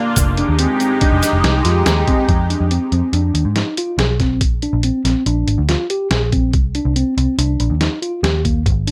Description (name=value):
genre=progressive instrumental, band music in an uneven meter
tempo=141 BPM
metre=5/4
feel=straight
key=F dorian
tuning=A4 = 440 Hz
part: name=lush unison pad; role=accompaniment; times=0.0-2.3 s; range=Ab3 to G4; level=-22 LUFS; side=equal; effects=chorus, phaser, plate reverb
part: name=mellow tine electric piano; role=arpeggios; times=0.0-8.9 s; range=Bb3 to Ab4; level=-22 LUFS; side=equal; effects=none
part: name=vintage muted picked electric bass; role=bass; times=0.2-8.9 s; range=F1 to Ab2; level=-20 LUFS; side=equal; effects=none
part: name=lo-fi sampler-style drum kit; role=drums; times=0.2-8.9 s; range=hi-hat, kick drum, snare drum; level=-21 LUFS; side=equal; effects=none
part: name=egg shaker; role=percussion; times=0.2-2.0 s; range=none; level=-26 LUFS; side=equal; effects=none
room=light reverb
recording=none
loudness=-17 LUFS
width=mono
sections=0.0-2.3 A section; 2.3-8.9 B section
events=none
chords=0.2 Fm7; 4.4 Bb9; 6.5 Cm9